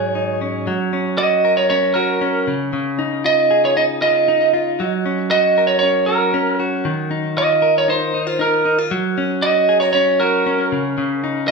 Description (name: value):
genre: indie pop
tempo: 117 BPM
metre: 4/4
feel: straight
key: unclear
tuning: A4 = 441 Hz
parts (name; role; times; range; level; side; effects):
- lightly driven lead guitar; melody; 0.0-11.5 s; Bb4 to Eb5; -16 LUFS; right 2 dB; digital delay
- direct-recorded clean electric guitar; arpeggios; 0.0-11.5 s; Ab2 to Bb4; -20 LUFS; left 1 dB; digital delay
room: moderate large studio reverb, RT60 0.8 s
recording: studio ambience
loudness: -15 LUFS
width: side -3 dB against mid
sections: 0.7-11.5 A section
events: none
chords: 0.0 Ab7sus4; 0.7 Gb; 2.5 Dbadd9; 4.8 Gb; 6.9 Ebsus2; 8.9 Gb; 10.7 Dbsus2